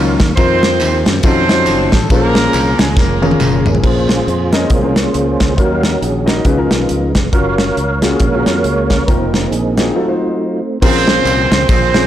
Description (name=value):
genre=uptempo gospel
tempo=138 BPM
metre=4/4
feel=swing 59% on 8ths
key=Bb minor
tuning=A4 = 443 Hz
part: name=mellow horn section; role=melody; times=0.0-3.8, 10.8-12.1 s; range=F3 to C5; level=-16 LUFS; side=right 3 dB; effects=slapback echo
part: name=warm concert grand piano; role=accompaniment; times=0.0-12.1 s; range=Bb2 to Eb5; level=-18 LUFS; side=left 3 dB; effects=none
part: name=mellow tonewheel organ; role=sustained chords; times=0.0-12.1 s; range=Eb3 to F5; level=-19 LUFS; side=right 2 dB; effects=slow rotary speaker, chorus vibrato
part: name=modern bright fingered electric bass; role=bass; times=0.0-12.1 s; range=F1 to Gb2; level=-18 LUFS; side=equal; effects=none
part: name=modern studio drum kit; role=drums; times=0.2-12.0 s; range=crash cymbal, hi-hat, kick drum, ride cymbal, snare drum, toms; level=-15 LUFS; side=equal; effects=none
part: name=tambourine and handclaps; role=percussion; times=0.2-3.7, 10.8-12.0 s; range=none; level=-27 LUFS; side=right 2 dB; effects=none
room=light reverb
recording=blown-out, overdriven recording, overdrive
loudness=-11 LUFS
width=side -11 dB against mid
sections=0.0-3.8 A section; 3.8-10.8 B section; 10.8-12.1 A section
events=drum fill 3.0-3.8; tonewheel organ solo 3.8-10.8; break 10.0-10.8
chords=0.4 F7sus4; 1.2 F7b9b13; 2.1 Bbm9; 5.6 Ebm7; 6.5 Db7; 7.3 Gbmaj7; 9.1 F7sus4; 10.0 F7b9; 10.8 Bbm9